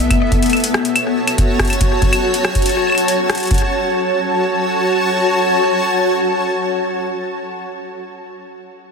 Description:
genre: IDM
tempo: 141 BPM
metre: 4/4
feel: straight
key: F# minor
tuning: A4 = 441 Hz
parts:
  - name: granular cloud pad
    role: sustained chords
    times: 0.0-7.4 s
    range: F#4 to A5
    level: -16 LUFS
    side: left 1 dB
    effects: built-in reverb
  - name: electro analog drum machine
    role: drums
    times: 0.0-3.6 s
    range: claves, hi-hat, rim click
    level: -20 LUFS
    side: left 1 dB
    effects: soft clipping on snare, ping-pong delay
  - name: electronic kick drum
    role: drums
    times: 0.1-3.6 s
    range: none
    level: -16 LUFS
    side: equal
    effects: none
room: moderate huge ambient reverb, RT60 7.4 s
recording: dense, heavily limited modern master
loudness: -14 LUFS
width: side -5 dB against mid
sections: 0.0-3.5 A section; 3.5-6.9 B section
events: none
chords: 0.1 F#m

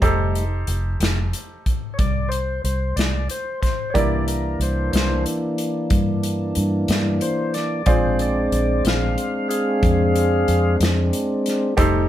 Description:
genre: slow blues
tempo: 61 BPM (dotted quarters)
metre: 12/8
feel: straight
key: unclear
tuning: A4 = 442 Hz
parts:
  - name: bright upright piano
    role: accompaniment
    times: 0.0-12.1 s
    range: Eb4 to D5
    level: -25 LUFS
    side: right 3 dB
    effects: none
  - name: tonewheel organ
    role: sustained chords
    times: 0.0-12.1 s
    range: E3 to F5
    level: -22 LUFS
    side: equal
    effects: slow rotary speaker
  - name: vintage muted fingered electric bass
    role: bass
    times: 0.0-12.1 s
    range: F1 to G2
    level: -22 LUFS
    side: equal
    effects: none
  - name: natural country drum kit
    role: drums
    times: 0.0-11.9 s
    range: hi-hat, kick drum, snare drum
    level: -23 LUFS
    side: left 1 dB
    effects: none
room: light reverb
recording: band playing live in one room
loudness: -18 LUFS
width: side -12 dB against mid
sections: 0.0-12.1 A section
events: tonewheel organ solo 0.0-12.1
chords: 0.0 F9; 4.0 C9; 7.9 Bb9

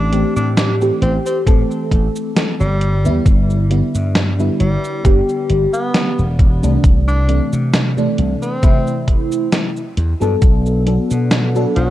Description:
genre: vaporwave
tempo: 67 BPM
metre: 4/4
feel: swing 54% on 16ths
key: unclear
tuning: A4 = 436 Hz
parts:
  - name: breathy tenor saxophone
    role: melody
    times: 0.0-11.9 s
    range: F#3 to D4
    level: -25 LUFS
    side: equal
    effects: vintage 12-bit sampler grit, tape echo
  - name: FM electric piano with soft pad layer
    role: accompaniment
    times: 0.0-11.9 s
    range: C3 to A4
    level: -19 LUFS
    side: equal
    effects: phaser, wide subtle chorus, tape echo
  - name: slap bass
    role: bass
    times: 0.0-11.9 s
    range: E1 to C3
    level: -16 LUFS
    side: equal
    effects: none
  - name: gated 80s digital drum machine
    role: drums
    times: 0.1-11.9 s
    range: cabasa, hi-hat, snare drum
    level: -19 LUFS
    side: equal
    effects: gated reverb, gated reverb snare, vintage 12-bit sampler grit
  - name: electronic kick drum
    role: drums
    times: 1.5-10.6 s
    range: none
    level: -12 LUFS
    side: equal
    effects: vintage 12-bit sampler grit
  - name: warbly tape-like pad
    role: sustained chords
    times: 10.7-11.9 s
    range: D4 to F#5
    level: -27 LUFS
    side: left 1 dB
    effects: chorus, built-in reverb
room: light reverb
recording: dark, warm production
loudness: -13 LUFS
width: side -14 dB against mid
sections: 0.0-11.9 A section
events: none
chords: 0.0 Am7; 3.3 G6; 6.4 C69; 10.4 Bm7

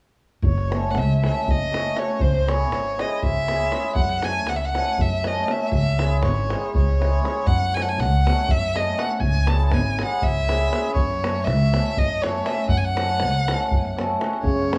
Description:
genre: balkan folk, Balkan wedding band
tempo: 240 BPM (eighths)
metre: 7/8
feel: straight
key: F# minor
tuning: A4 = 440 Hz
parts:
  - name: upright bass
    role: bass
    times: 0.4-14.8 s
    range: F#1 to F#2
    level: -25 LUFS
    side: equal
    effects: none
  - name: davul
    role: percussion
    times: 0.4-14.8 s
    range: none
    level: -29 LUFS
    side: equal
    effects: none
  - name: rich violin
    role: melody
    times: 0.5-14.8 s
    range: B#4 to A5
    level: -28 LUFS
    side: equal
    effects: tape echo
  - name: cimbalom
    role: accompaniment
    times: 0.7-14.8 s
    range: G#3 to A4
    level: -30 LUFS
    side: equal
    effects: none
  - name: mellow French horn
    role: second line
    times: 14.4-14.8 s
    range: C#3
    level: -25 LUFS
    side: equal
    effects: none
room: light reverb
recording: worn, warbling old tape, cassette tape, warbly pitch drift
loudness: -22 LUFS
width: mono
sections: 0.4-14.4 A section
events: none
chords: 0.4 F#m; 2.2 C#m; 3.9 F#m; 5.7 C#m; 7.5 F#m; 9.2 C#m; 10.9 F#m

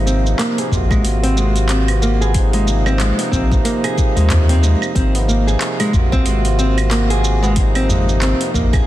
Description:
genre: organic downtempo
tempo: 92 BPM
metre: 4/4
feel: swing 59% on 16ths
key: Ab mixolydian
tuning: A4 = 440 Hz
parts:
  - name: pedal harmonium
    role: accompaniment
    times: 0.0-8.9 s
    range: C3 to Gb4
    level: -21 LUFS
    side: right 2 dB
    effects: vintage 12-bit sampler grit, sidechain pumping, low-pass filter, ping-pong delay, shimmer reverb
  - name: warm sub bass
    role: bass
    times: 0.0-8.8 s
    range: Ab1 to Eb2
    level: -16 LUFS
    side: equal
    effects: sidechain pumping
  - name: nylon-string guitar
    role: arpeggios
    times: 0.1-8.9 s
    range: Ab3 to Ab4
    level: -21 LUFS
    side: equal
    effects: low-pass filter, ping-pong delay, shimmer reverb
  - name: afro-pop drum kit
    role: drums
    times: 0.1-8.8 s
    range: claves, handclaps, hi-hat, shaker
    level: -24 LUFS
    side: right 2 dB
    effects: small room ambience
  - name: tabla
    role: percussion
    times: 0.3-8.8 s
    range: none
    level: -27 LUFS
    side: equal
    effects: none
  - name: electronic kick drum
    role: drums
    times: 0.7-8.8 s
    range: none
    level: -18 LUFS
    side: equal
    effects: small room ambience
room: light reverb, studio reverb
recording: dense, heavily limited modern master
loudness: -13 LUFS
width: side -14 dB against mid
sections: 0.0-8.9 A section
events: filter sweep on nylon-string guitar 0.0-8.9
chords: 0.0 Ab7

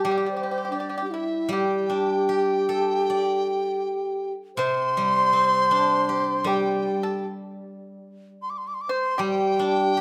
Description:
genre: chinese traditional, Chinese chamber ensemble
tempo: 78 BPM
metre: 2/4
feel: rubato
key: G zhi mode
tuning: A4 = 437 Hz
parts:
  - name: mellow large dizi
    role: melody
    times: 0.0-10.0 s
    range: C5 to D6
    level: -27 LUFS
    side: equal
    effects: none
  - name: bright reedy low xiao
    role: second line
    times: 0.0-10.0 s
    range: D4 to C5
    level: -28 LUFS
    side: equal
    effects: none
  - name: pipa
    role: second line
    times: 0.0-10.0 s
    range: E4 to C5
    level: -33 LUFS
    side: equal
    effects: none
  - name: steel-string zither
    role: accompaniment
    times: 0.0-10.0 s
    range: C3 to D5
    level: -33 LUFS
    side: equal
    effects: none
room: moderate recital hall reverb, RT60 1.5 s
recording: none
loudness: -24 LUFS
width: mono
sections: 0.0-1.5 A section; 1.5-10.0 B section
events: none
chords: none

